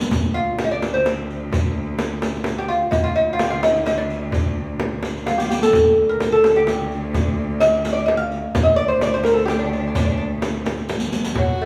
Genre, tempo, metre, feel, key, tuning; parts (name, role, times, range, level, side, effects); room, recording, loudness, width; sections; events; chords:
Persian modal ensemble; 85 BPM (dotted quarters); 6/8; straight; D dastgah shur; A4 = 440 Hz
clear cello; drone; 0.0-11.4 s; D2; -29 LUFS; equal
riq; percussion; 0.0-11.4 s; -32 LUFS; equal
tombak; percussion; 0.0-11.5 s; -29 LUFS; equal
frame drum; percussion; 0.1-11.5 s; -28 LUFS; equal
lute; melody; 0.3-11.7 s; F#3 to F5; -21 LUFS; equal
bright kamancheh; second line; 11.4-11.7 s; F#4; -37 LUFS; equal
wet large studio reverb, RT60 1.3 s; band playing live in one room; -20 LUFS; mono
0.1-11.4 A section
drum fill 5.3-5.7, 10.9-11.4